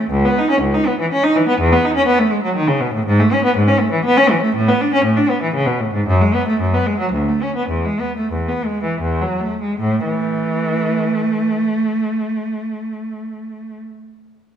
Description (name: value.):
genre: classical, baroque-style suite movement for unaccompanied cello.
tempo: 74-126 BPM.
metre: 3/4.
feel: rubato.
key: A major from 3.1 s.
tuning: A4 = 440 Hz.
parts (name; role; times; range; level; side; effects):
rich cello; solo; 0.0-13.8 s; C#2 to D#4; -15 LUFS; equal; none.
room: wet recital hall reverb, RT60 1.6 s.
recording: none.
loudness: -15 LUFS.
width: side -9 dB against mid.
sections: 0.0-9.8 A section; 9.8-14.4 B section.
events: slowing down 5.3-9.8.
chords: 0.1 C#m; 1.6 C#m/E; 3.1 E/G#; 4.5 A; 6.1 F#m; 7.1 Bm/D; 7.7 A5/E; 9.0 E; 9.8 A5.